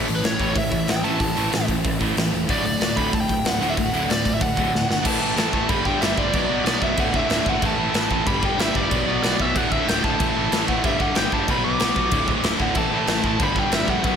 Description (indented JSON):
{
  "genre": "punk rock",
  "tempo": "187 BPM",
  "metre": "4/4",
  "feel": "straight",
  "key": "D major",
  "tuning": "A4 = 439 Hz",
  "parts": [
    { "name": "biting overdriven guitar", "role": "riff", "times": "0.0-14.2 s", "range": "D2 to A4", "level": "-28 LUFS", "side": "equal", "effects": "none" },
    { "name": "distorted electric guitar", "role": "riff", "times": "0.0-14.2 s", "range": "D2 to B3", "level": "-26 LUFS", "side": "left 8 dB", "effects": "distortion" },
    { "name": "distorted electric guitar", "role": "riff", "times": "0.0-14.2 s", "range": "D2 to B3", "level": "-27 LUFS", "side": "right 10 dB", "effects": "overdrive" },
    { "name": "fuzz picked electric bass", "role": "bass", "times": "0.0-14.2 s", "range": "D1 to B1", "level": "-29 LUFS", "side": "equal", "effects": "overdrive" },
    { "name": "big rock drum kit", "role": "drums", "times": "0.1-14.1 s", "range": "crash cymbal, hi-hat, kick drum, snare drum", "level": "-24 LUFS", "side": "equal", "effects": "none" },
    { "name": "biting lead guitar", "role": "melody", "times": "0.2-14.2 s", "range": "B4 to D6", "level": "-25 LUFS", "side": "right 1 dB", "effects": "overdrive" }
  ],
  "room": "moderate concert hall reverb, RT60 1.9 s, studio reverb",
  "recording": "big arena sound",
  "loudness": "-18 LUFS",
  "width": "side -7 dB against mid",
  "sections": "0.0-5.1 A section; 5.1-14.2 B section",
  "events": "drum fill 4.7-5.1",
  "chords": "0.0 A; 2.5 D; 5.1 A5; 5.7 G5; 6.3 Bm; 7.0 D5; 7.6 A5; 8.3 G5; 8.9 Bm; 9.5 D5; 10.2 A5; 10.8 G5; 11.5 Bm; 12.1 D5; 12.8 A5; 13.4 G5",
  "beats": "0.24 0.56 0.88 | 1.20 1.52 1.84 2.16 | 2.48 2.81 3.13 3.45 | 3.77 4.09 4.41 4.74 | 5.05 5.38 5.70 6.02 | 6.34 6.66 6.98 7.30 | 7.62 7.94 8.26 8.58 | 8.90 9.23 9.55 9.87 | 10.19 10.51 10.83 11.15 | 11.48 11.80 12.12 12.44 | 12.76 13.08 13.40 13.72 | 14.04"
}